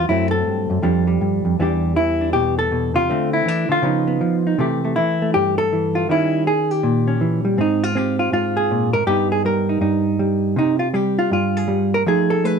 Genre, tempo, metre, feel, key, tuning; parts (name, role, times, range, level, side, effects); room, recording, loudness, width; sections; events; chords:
solo jazz; 160 BPM; 4/4; swing 63% on 8ths; Ab major from 7.6 s; A4 = 440 Hz
hollow-body jazz guitar; solo; 0.0-12.6 s; E2 to B4; -16 LUFS; equal
moderate club reverb, RT60 0.5 s; -16 LUFS; side -6 dB against mid
0.0-7.6 A section; 7.6-12.6 B section
0.1 F#dim; 0.8 F69; 1.6 Em7; 3.1 D5; 3.8 Db9; 4.6 C6; 6.1 Eb7b9; 7.6 Abmaj13; 9.1 Gaug; 10.6 C5; 12.1 F7#11